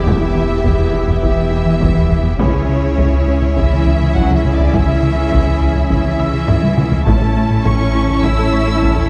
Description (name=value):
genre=cinematic, hybrid orchestral and electronic film score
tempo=103 BPM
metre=4/4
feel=straight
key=unclear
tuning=A4 = 440 Hz
part: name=warm symphonic violin section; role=melody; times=0.0-9.1 s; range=C#5 to E6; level=-26 LUFS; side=equal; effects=none
part: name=rich symphonic violin section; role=second line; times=0.0-9.1 s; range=G4 to E5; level=-29 LUFS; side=equal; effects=none
part: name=rich symphonic viola section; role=accompaniment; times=0.0-9.1 s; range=B3 to E4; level=-28 LUFS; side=equal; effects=none
part: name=dark French horn section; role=sustained chords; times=0.0-9.1 s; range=B3 to G4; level=-25 LUFS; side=equal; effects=none
part: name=rich studio double bass section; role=bass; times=0.0-9.1 s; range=A1 to E2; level=-23 LUFS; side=equal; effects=none
part: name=rich symphonic cello section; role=bass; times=0.0-9.1 s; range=C#3 to E4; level=-25 LUFS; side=equal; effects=none
part: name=saturated sub bass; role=bass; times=0.0-9.1 s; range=E1 to C#2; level=-23 LUFS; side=equal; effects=none
part: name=bright concert grand piano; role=texture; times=0.0-9.1 s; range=B4 to E6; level=-35 LUFS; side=equal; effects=none
part: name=plucky analog bass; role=riff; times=0.1-9.0 s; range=C#2 to A3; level=-22 LUFS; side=equal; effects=none
part: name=taiko ensemble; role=drums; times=0.1-9.1 s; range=none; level=-21 LUFS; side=equal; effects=none
room=moderate scoring stage reverb, RT60 2.0 s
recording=dark, warm production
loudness=-15 LUFS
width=mono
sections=0.0-9.1 A section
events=drum fill 6.5-7.1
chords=0.0 Em; 2.4 C#m; 7.1 A